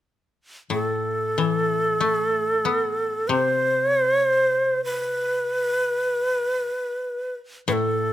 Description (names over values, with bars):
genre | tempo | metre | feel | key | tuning
japanese traditional, Japanese chamber music | free time | none | none | A hirajoshi | A4 = 440 Hz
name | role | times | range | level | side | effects
breathy bright shakuhachi | melody | 0.7-8.1 s | A4 to C5 | -21 LUFS | right 1 dB | none
koto | accompaniment | 0.7-8.1 s | A2 to B3 | -27 LUFS | left 6 dB | none
room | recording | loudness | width
light reverb | close, detailed microphones | -21 LUFS | side -12 dB against mid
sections
0.0-8.1 A section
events
none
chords
none